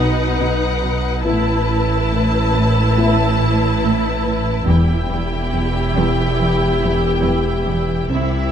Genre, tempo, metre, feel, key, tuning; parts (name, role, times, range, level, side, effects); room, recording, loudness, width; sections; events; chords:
cinematic, suspense film score; 70 BPM; 4/4; straight; E harmonic minor; A4 = 443 Hz
dark symphonic violin section; melody; 0.0-8.5 s; E5 to A5; -26 LUFS; left 2 dB
warm symphonic violin section; second line; 0.0-8.5 s; G4 to B4; -25 LUFS; left 4 dB
rich studio viola section; accompaniment; 0.0-8.5 s; D#4 to E4; -23 LUFS; right 2 dB
warm symphonic cello section; riff; 0.0-8.4 s; E2 to A3; -22 LUFS; equal
rich symphonic double bass section; bass; 0.0-8.5 s; E1 to C2; -23 LUFS; right 3 dB
warm symphonic cello section; bass; 0.0-8.5 s; E2 to C3; -24 LUFS; right 3 dB
saturated sub bass; drone; 0.0-8.5 s; E1 to C2; -24 LUFS; equal
mellow French horn section; sustained chords; 1.2-8.5 s; B3 to G4; -24 LUFS; left 3 dB
timpani; percussion; 4.7-5.9 s; E2; -22 LUFS; left 1 dB
light reverb; close, detailed microphones; -15 LUFS; side -8 dB against mid
0.0-8.5 A section
0.0 B; 1.2 Asus2; 4.7 Em